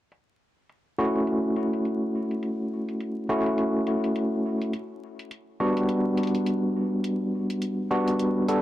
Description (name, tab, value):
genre	glitch hop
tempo	104 BPM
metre	4/4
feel	swing 59% on 16ths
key	F# phrygian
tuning	A4 = 440 Hz
part	electronic hi-hat	drums	0.1-8.6 s	none	-43 LUFS	equal	overdrive, low-pass filter on hats, low-pass filter on room
part	overdriven tine electric piano	stabs	1.0-8.6 s	G3 to A4	-24 LUFS	equal	fast tremolo, low-pass filter, ping-pong delay
room	moderate plate reverb, RT60 2.0 s, digital ambience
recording	vinyl crackle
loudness	-24 LUFS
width	side -14 dB against mid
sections	0.1-8.6 A section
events	none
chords	0.1 F#m7; 4.7 Gmaj7